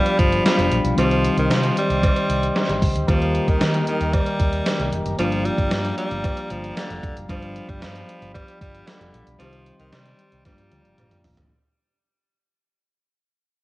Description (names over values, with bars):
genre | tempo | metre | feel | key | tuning
1980s-style pop | 114 BPM | 4/4 | straight | G minor | A4 = 441 Hz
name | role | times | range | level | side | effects
raspy tenor saxophone | melody | 0.0-11.2 s | D3 to G3 | -26 LUFS | equal | cassette tape
mellow tine electric piano | accompaniment | 0.0-11.5 s | Eb3 to G4 | -25 LUFS | left 2 dB | lush chorus, cassette tape
mellow brass ensemble | sustained chords | 0.0-11.5 s | G4 to C6 | -28 LUFS | right 1 dB | cassette tape
gated 80s digital drum machine | drums | 0.1-11.5 s | hi-hat, kick drum, snare drum, tambourine, toms | -23 LUFS | equal | gated reverb, gated reverb snare, cassette tape
fingered electric bass | bass | 0.2-11.5 s | F1 to Eb3 | -26 LUFS | equal | none
cowbell | percussion | 0.5-11.1 s | none | -34 LUFS | right 3 dB | none
room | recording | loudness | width
light reverb | home recording on cassette | -18 LUFS | side -18 dB against mid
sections
0.0-11.5 A section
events
fade-out 0.0-11.5; drum fill 10.5-11.5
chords
0.0 G7; 1.0 Cm; 3.1 Eb; 5.2 Gm7; 7.3 G7; 9.4 Cm; 10.5 Gm7